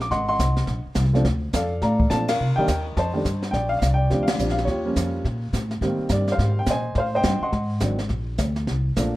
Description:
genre	jazz piano trio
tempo	210 BPM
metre	4/4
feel	swing 62% on 8ths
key	Bb major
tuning	A4 = 440 Hz
part	warm upright piano	melody	0.0-9.1 s	Eb3 to D6	-24 LUFS	equal	none
part	upright bass	bass	0.0-9.2 s	Ab1 to C3	-23 LUFS	equal	none
part	jazz brush drum kit	drums	0.0-9.2 s	brushed snare drum, hi-hat, kick drum, ride cymbal, snare drum	-27 LUFS	equal	none
room	light reverb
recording	rough home demo mix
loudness	-20 LUFS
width	side -17 dB against mid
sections	0.0-3.5 A section; 3.5-9.2 B section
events	band accent 2.2, 4.2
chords	0.1 Ab9; 1.2 Bbmaj7; 2.4 Cm7; 3.0 F9; 3.5 Bb6; 4.7 Eb9; 5.8 Abmaj7; 7.0 Am7b5; 7.5 Ab7#11; 8.1 Bbadd9

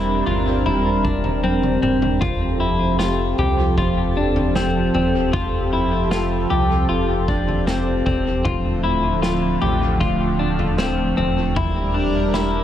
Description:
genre	dream pop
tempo	77 BPM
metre	4/4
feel	straight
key	F major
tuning	A4 = 440 Hz
part	lush unison pad	sustained chords	0.0-12.6 s	D3 to Bb4	-22 LUFS	right 1 dB	chorus, shimmer reverb
part	semi-hollow electric guitar	arpeggios	0.0-12.6 s	C4 to G4	-22 LUFS	left 3 dB	lush chorus, analog delay, shimmer reverb
part	sub bass with octave	bass	0.0-12.6 s	D1 to C2	-24 LUFS	equal	none
part	vintage drum kit	drums	0.3-12.5 s	kick drum, snare drum, toms	-25 LUFS	equal	analog delay
room	moderate plate reverb, RT60 2.7 s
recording	echo-heavy mix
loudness	-17 LUFS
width	side -10 dB against mid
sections	0.0-12.6 A section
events	drum fill 1.4-2.2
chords	0.0 C7/E; 2.2 Fadd9; 8.4 Dm7; 11.6 C7/E

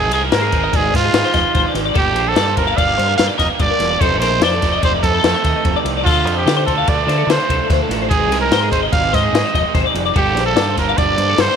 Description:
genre	math rock and midwest emo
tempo	146 BPM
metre	5/4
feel	straight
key	G minor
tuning	A4 = 442 Hz
part	growling trumpet	melody	0.0-11.6 s	F4 to F5	-18 LUFS	right 3 dB	none
part	twelve-string electric guitar	arpeggios	0.0-11.6 s	Ab4 to F5	-21 LUFS	left 12 dB	ensemble chorus
part	biting overdriven guitar	riff	0.0-11.6 s	F2 to Eb4	-22 LUFS	right 16 dB	none
part	growling fingered electric bass	bass	0.0-11.5 s	E1 to D3	-22 LUFS	right 1 dB	overdrive
part	compact cocktail drum kit	drums	0.1-11.5 s	crash cymbal, kick drum, ride cymbal, snare drum	-19 LUFS	left 3 dB	none
room	light reverb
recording	1960s-style stereo with parts hard left and right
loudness	-13 LUFS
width	side -7 dB against mid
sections	0.0-11.6 A section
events	none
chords	0.0 Ab6; 2.0 Gm7; 4.0 F7sus4; 6.1 Dm7; 8.1 Ab6; 10.2 Gmadd9

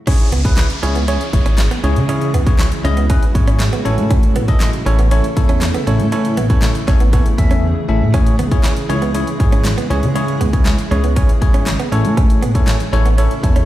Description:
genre	dance-pop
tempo	119 BPM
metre	4/4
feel	straight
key	C# minor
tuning	A4 = 441 Hz
part	bell-like tine electric piano	accompaniment	0.1-13.7 s	C#4 to E5	-22 LUFS	left 1 dB	medium stereo tremolo, sidechain pumping
part	granular cloud pad	sustained chords	0.7-13.7 s	C#3 to A4	-24 LUFS	left 1 dB	built-in reverb, sidechain pumping
part	direct-recorded clean electric guitar	riff	0.1-13.6 s	B3 to C#4	-25 LUFS	right 7 dB	lush chorus
part	pop drum kit	drums	0.1-13.7 s	crash cymbal, handclaps, hi-hat, kick drum, snare drum	-15 LUFS	equal	none
part	downlifter	sound effects	0.1-4.1 s	none	-29 LUFS	equal	none
part	chorused synth bass	bass	0.3-13.7 s	G#1 to C#3	-16 LUFS	equal	sidechain pumping
part	group handclap	percussion	0.6-12.8 s	none	-32 LUFS	left 3 dB	none
room	light reverb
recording	played on a big sound system in a bare room, stone room reverb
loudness	-12 LUFS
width	side -14 dB against mid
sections	0.1-13.7 A section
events	silent gap 7.6-8.1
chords	0.1 C#m; 3.9 A; 8.1 C#m; 11.9 A

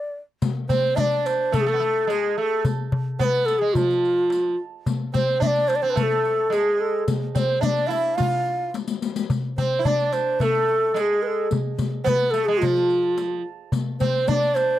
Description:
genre	Turkish makam ensemble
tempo	108 BPM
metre	4/4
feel	straight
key	D makam nikriz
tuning	A4 = 440 Hz
part	breathy ney	melody	0.0-14.8 s	F4 to F5	-21 LUFS	equal	none
part	darbuka	percussion	0.4-14.7 s	none	-25 LUFS	left 1 dB	none
part	riq	percussion	0.4-14.7 s	none	-31 LUFS	left 8 dB	none
part	sitar	second line	0.7-14.8 s	F3 to F4	-28 LUFS	right 9 dB	none
room	light reverb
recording	dry, close 1970s-style studio recording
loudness	-20 LUFS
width	side -13 dB against mid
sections	0.4-14.8 A section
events	drum fill 8.7-9.3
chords	none

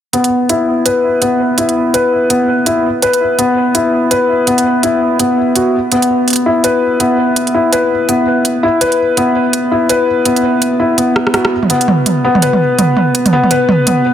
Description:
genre	half-time drum and bass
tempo	166 BPM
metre	4/4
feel	swing 60% on 16ths, half-time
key	unclear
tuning	A4 = 441 Hz
part	felt-muted upright piano	arpeggios	0.1-14.1 s	B3 to B4	-11 LUFS	left 1 dB	vintage 12-bit sampler grit, low-pass filter, digital delay
part	organic electronic drum kit	drums	0.1-14.0 s	hi-hat, rim click, toms	-14 LUFS	right 3 dB	overdrive
room	light reverb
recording	dense, heavily limited modern master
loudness	-10 LUFS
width	side -10 dB against mid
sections	0.0-14.1 A section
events	filter sweep on felt piano 0.0-14.1; drum fill 11.2-11.5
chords	none

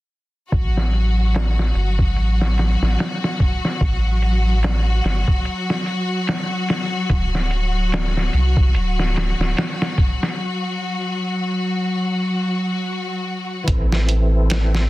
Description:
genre	trip hop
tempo	73 BPM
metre	4/4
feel	swing 57% on 16ths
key	unclear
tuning	A4 = 439 Hz
part	bright symphonic string section	sustained chords	0.5-13.7 s	F#3 to F#4	-23 LUFS	left 1 dB	none
part	soft dub sub bass	bass	0.5-14.9 s	D1 to C2	-18 LUFS	equal	none
part	trip hop sampler-style drum kit	drums	0.5-14.9 s	hi-hat, kick drum, snare drum	-21 LUFS	equal	low-pass filter on kick, low-pass filter on hats, soft clipping on snare, low-pass filter on snare
part	bright tonewheel organ	accompaniment	13.6-14.9 s	E3 to A4	-25 LUFS	right 1 dB	chorus vibrato, slow rotary speaker, harmonic tremolo, low-pass filter
room	little or no reverb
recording	dense, heavily limited modern master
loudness	-17 LUFS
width	side -18 dB against mid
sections	0.5-13.7 A section; 13.7-14.9 B section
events	break 10.4-13.7; filter sweep on tonewheel organ 13.7-14.9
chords	0.5 F#m; 7.1 D; 13.7 Am

